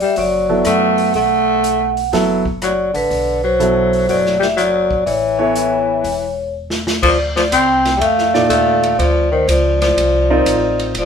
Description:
modal jazz; 122 BPM; 4/4; swing 67% on 8ths; B minor, D phrygian from 7.0 s; A4 = 440 Hz
vibraphone with medium mallets; melody; 0.0-11.1 s; B4 to G5; -17 LUFS; right 2 dB
growling tenor saxophone; second line; 0.0-11.1 s; D3 to C4; -17 LUFS; left 4 dB
upright bass; bass; 0.0-11.1 s; E1 to F#2; -24 LUFS; right 1 dB
vintage drum kit; drums; 0.0-11.1 s; crash cymbal, hi-hat, kick drum, ride cymbal, rim click, snare drum; -24 LUFS; equal
warm baby grand piano; accompaniment; 0.5-10.9 s; Bb2 to D5; -17 LUFS; right 2 dB
moderate studio reverb, RT60 0.6 s; band playing live in one room; -13 LUFS; side -7 dB against mid
0.0-7.0 A section; 7.0-11.1 B section
drum fill 6.5-7.0
0.0 Bm7; 5.1 A; 7.0 Dm7
0.16 0.65 | 1.14 1.63 2.12 2.62 | 3.11 3.60 4.09 4.58 | 5.07 5.56 6.05 6.54 | 7.03 7.52 8.01 8.50 | 8.99 9.48 9.97 10.46 | 10.95

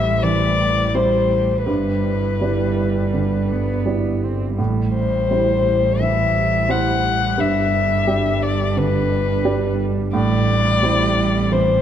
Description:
neoclassical piano and strings; 86 BPM; 4/4; rubato; A minor; A4 = 441 Hz
muted violin; melody; 0.0-11.8 s; B4 to F#5; -20 LUFS; left 4 dB
muted cello; second line; 0.0-11.8 s; G3 to C4; -25 LUFS; right 6 dB
warm upright piano; accompaniment; 0.0-11.8 s; G2 to D5; -23 LUFS; right 3 dB
warbly tape-like pad; sustained chords; 0.0-11.8 s; C4 to E5; -31 LUFS; right 1 dB; chorus, built-in reverb
muted double bass; bass; 0.0-11.8 s; G1 to A1; -22 LUFS; equal
moderate concert hall reverb, RT60 2.3 s; -16 LUFS; side -10 dB against mid
0.0-11.8 A section
0.0 Am7; 1.7 Em7/G; 4.6 Am7; 7.4 G; 10.1 Am7
0.24 0.95 | 1.67 2.41 3.14 3.87 | 4.59 5.30 6.00 6.70 | 7.39 8.08 8.77 9.45 | 10.14 10.82 11.52

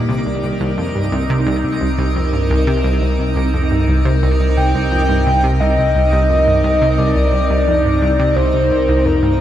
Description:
ambient, sequencer-driven space music; 87 BPM; 4/4; straight; C minor; A4 = 442 Hz
evolving wavetable pad; sustained chords; 0.0-9.4 s; C3 to Bb4; -20 LUFS; equal; phaser, built-in reverb
analog pluck; riff; 0.0-9.3 s; C2 to C3; -19 LUFS; equal; chorus, tape echo
warm sub bass; bass; 0.0-9.4 s; C2; -18 LUFS; equal
twinkling granular texture; texture; 0.0-9.4 s; Eb4 to D6; -26 LUFS; right 1 dB; built-in reverb
pulse-width lead; melody; 4.6-9.4 s; Bb4 to G5; -17 LUFS; equal; chorus, tape echo
moderate huge ambient reverb, RT60 8.1 s; cassette tape; -13 LUFS; side -11 dB against mid
0.0-9.4 A section
0.1 Cm7
| 0.09 0.78 1.47 2.16 | 2.85 3.54 4.23 4.92 | 5.61 6.29 6.98 7.67 | 8.36 9.05

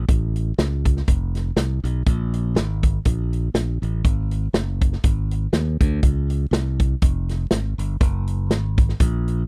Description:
uptempo gospel; 121 BPM; 4/4; swing 55% on 8ths; A4 = 440 Hz
modern bright fingered electric bass; bass; 0.0-9.4 s; F1 to Eb2; -24 LUFS; equal
natural country drum kit; drums; 0.1-9.4 s; hi-hat, kick drum, snare drum; -22 LUFS; equal
little or no reverb; dry, close 1970s-style studio recording; -21 LUFS; mono
0.0-9.5 A section
| 0.09 0.58 1.08 1.57 | 2.07 2.56 3.06 3.55 | 4.04 4.54 5.04 5.53 | 6.03 6.52 7.02 7.51 | 8.01 8.50 9.00

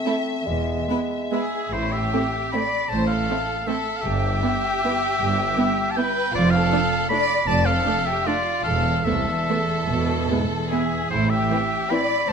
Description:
classical, orchestral ballroom waltz; 137-170 BPM; 3/4; rubato; A minor; A4 = 439 Hz
rich studio violin section; melody; 0.0-12.0 s; D4 to E5; -35 LUFS; left 3 dB
clear clarinet; second line; 0.0-1.5 s; B3 to C4; -31 LUFS; left 4 dB
warm bassoon; accompaniment; 0.0-1.5 s; G#3 to A3; -29 LUFS; right 1 dB
warm studio violin section; second line; 0.1-12.3 s; E4 to D5; -26 LUFS; left 2 dB
warm chamber viola section; accompaniment; 0.1-12.0 s; E3 to D4; -27 LUFS; right 3 dB
rich studio cello section; bass; 0.5-12.3 s; C2 to B2; -26 LUFS; right 2 dB
rich studio double bass section; bass; 0.5-12.3 s; E1 to A1; -28 LUFS; right 3 dB
bright oboe; second line; 1.3-12.3 s; C5 to B5; -25 LUFS; equal
moderate scoring stage reverb, RT60 1.8 s; -20 LUFS; side -6 dB against mid
0.0-1.7 A section; 1.7-12.3 A section
0.5 E; 1.7 Am; 4.0 Em/G; 6.3 Dm/F; 8.7 Esus4; 9.9 E; 11.1 Am
0.06 | 0.47 0.89 1.32 | 1.73 2.12 2.53 | 2.91 3.29 3.68 | 4.05 4.43 4.83 | 5.21 5.58 5.98 | 6.35 6.72 7.11 | 7.48 7.86 8.26 | 8.65 9.06 9.49 | 9.89 10.30 10.72 | 11.12 11.52 11.92 | 12.29

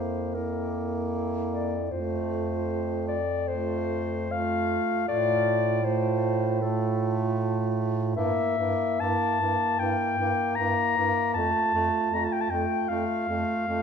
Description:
classical, lyrical piece for single-reed quartet; 77 BPM; 4/4; rubato; F major; A4 = 440 Hz
mellow clarinet; melody; 0.0-13.8 s; A4 to Bb5; -27 LUFS; left 4 dB
dark alto saxophone; second line; 0.0-13.8 s; E4 to F4; -33 LUFS; right 10 dB
warm tenor saxophone; accompaniment; 0.0-13.8 s; A3 to Bb3; -32 LUFS; equal
clear bass clarinet; bass; 0.0-13.8 s; F2 to A2; -31 LUFS; right 2 dB
wet scoring stage reverb, RT60 1.7 s; minimal, uncompressed stereo recording; -24 LUFS; side -6 dB against mid
0.0-13.8 A section
0.0 C7/F (rootless); 1.9 F; 5.1 F/A; 8.2 Edim/G; 11.4 F
0.36 1.14 | 1.92 2.69 3.48 4.31 | 5.08 5.84 6.62 7.39 | 8.17 9.01 9.80 10.58 | 11.36 12.13 12.90 13.68

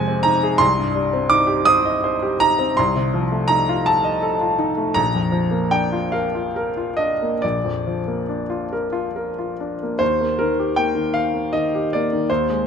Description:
classical, romantic character piece for solo piano; 44-58 BPM (dotted quarters); 6/8; rubato; Eb major; A4 = 440 Hz
clear grand piano; solo; 0.0-12.7 s; Bb1 to Eb6; -18 LUFS; equal
moderate scoring stage reverb, RT60 2.1 s; close, detailed microphones; -18 LUFS; side -7 dB against mid
0.0-10.0 A section; 10.0-12.7 B section
0.0 Fm7; 0.6 Cm; 2.8 F7/C; 5.0 Bb; 10.0 Eb
| 0.63 1.68 | 2.78 3.87 | 4.97 6.14 | 7.43 8.73 | 10.00 11.15 | 12.29

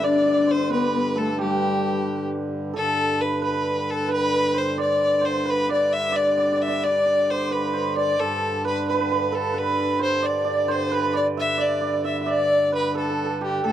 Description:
medieval dance; 88 BPM (dotted quarters); 6/8; straight; G major; A4 = 440 Hz
rich fiddle; melody; 0.0-13.7 s; G4 to E5; -22 LUFS; left 1 dB
dark viola da gamba; second line; 0.0-2.3, 13.6-13.7 s; G3 to D4; -25 LUFS; left 4 dB
hammered dulcimer; second line; 0.0-13.7 s; G4 to F#5; -27 LUFS; right 6 dB
hand-pumped harmonium; drone; 0.0-13.7 s; G2 to D3; -27 LUFS; equal
moderate booth ambience, RT60 0.2 s; dry, close 1970s-style studio recording; -20 LUFS; side -11 dB against mid
0.0-2.7 A section; 2.7-13.6 B section
| 0.03 0.71 | 1.39 2.07 | 2.75 3.43 | 4.11 4.79 | 5.47 6.15 | 6.83 7.51 | 8.19 8.87 | 9.55 10.23 | 10.91 11.59 | 12.27 12.95 | 13.63

